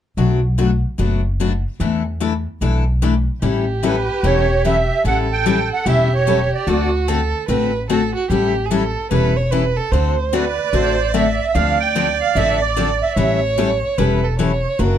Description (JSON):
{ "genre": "acoustic string swing (jazz manouche)", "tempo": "148 BPM", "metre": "4/4", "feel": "swing 63% on 8ths", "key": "A mixolydian", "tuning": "A4 = 440 Hz", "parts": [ { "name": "picked steel-string acoustic guitar", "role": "accompaniment", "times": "0.2-15.0 s", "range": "B2 to A4", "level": "-20 LUFS", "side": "left 6 dB", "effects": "none" }, { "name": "upright bass", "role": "bass", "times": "0.2-15.0 s", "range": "E1 to E2", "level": "-20 LUFS", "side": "equal", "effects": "none" }, { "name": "warm violin", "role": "second line", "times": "3.4-15.0 s", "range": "F#4 to E5", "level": "-22 LUFS", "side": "right 5 dB", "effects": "none" }, { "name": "musette accordion", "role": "melody", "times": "3.8-6.9, 10.3-13.4 s", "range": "B4 to G5", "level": "-19 LUFS", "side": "right 5 dB", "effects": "none" } ], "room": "light reverb", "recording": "dark, warm production", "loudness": "-15 LUFS", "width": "side -10 dB against mid", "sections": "0.2-3.4 A section; 3.4-15.0 B section", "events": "none", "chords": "0.2 Bm7; 1.8 E7sus4; 3.4 A7; 6.7 D7; 8.3 A7; 9.9 D7; 11.5 Dm7; 13.2 A7", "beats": "| 0.17 0.58 0.99 1.39 | 1.80 2.21 2.61 3.02 | 3.43 3.83 4.24 4.64 | 5.05 5.46 5.86 6.27 | 6.68 7.08 7.49 7.89 | 8.30 8.71 9.11 9.52 | 9.93 10.33 10.74 11.14 | 11.55 11.96 12.36 12.77 | 13.17 13.58 13.99 14.39 | 14.80" }